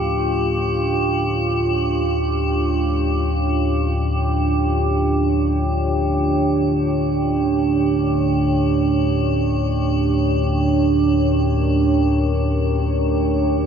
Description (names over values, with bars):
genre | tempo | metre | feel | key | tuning
ambient | free time | none | none | D harmonic minor | A4 = 440 Hz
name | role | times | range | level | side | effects
deep dark ambient pad | sustained chords | 0.0-13.7 s | D4 to C#5 | -20 LUFS | right 4 dB | chorus, built-in reverb
analog drone | drone | 0.0-13.7 s | D2 to A2 | -21 LUFS | left 2 dB | wide subtle chorus
metallic inharmonic drone | texture | 0.0-13.7 s | G4 | -25 LUFS | left 1 dB | chorus, built-in reverb
room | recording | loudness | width
moderate huge ambient reverb, RT60 8.9 s | none | -17 LUFS | side -7 dB against mid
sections
0.0-13.7 A section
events
fade-out on synth drone 0.0-13.7; filter sweep on synth drone 0.0-13.7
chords
0.0 Dm; 9.2 Bb/D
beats
free time